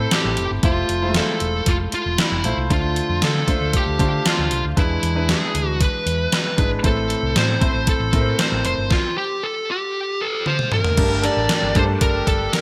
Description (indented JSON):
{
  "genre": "1980s-style pop",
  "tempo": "116 BPM",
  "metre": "4/4",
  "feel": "straight",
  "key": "unclear",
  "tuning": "A4 = 440 Hz",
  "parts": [
    { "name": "fuzz lead guitar", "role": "melody", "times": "0.0-12.6 s", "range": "E4 to D5", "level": "-25 LUFS", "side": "equal", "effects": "distortion" },
    { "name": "clear grand piano", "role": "accompaniment", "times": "0.0-12.6 s", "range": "G2 to E5", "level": "-27 LUFS", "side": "equal", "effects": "none" },
    { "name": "hollow-body short-scale fingered electric bass", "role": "bass", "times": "0.0-12.5 s", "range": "E1 to D3", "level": "-26 LUFS", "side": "equal", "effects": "none" },
    { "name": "gated 80s digital drum machine", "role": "drums", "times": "0.1-12.6 s", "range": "crash cymbal, hi-hat, kick drum, snare drum, toms", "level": "-23 LUFS", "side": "equal", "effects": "gated reverb, gated reverb snare, overdrive" },
    { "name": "accordion", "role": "sustained chords", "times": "11.0-12.6 s", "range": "G3 to A5", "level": "-31 LUFS", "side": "equal", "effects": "light tremolo tuning" }
  ],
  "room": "moderate plate reverb, RT60 2.0 s",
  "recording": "bright 1980s-style digital production",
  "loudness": "-20 LUFS",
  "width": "mono",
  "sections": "0.0-11.0 A section; 11.0-12.6 B section",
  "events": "stop 8.9-11.0; drum fill 10.5-11.0",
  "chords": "0.0 Am; 0.6 Fmaj7; 2.7 Dm7; 4.8 E7; 6.8 Am; 8.9 N.C.; 11.0 Gmadd9"
}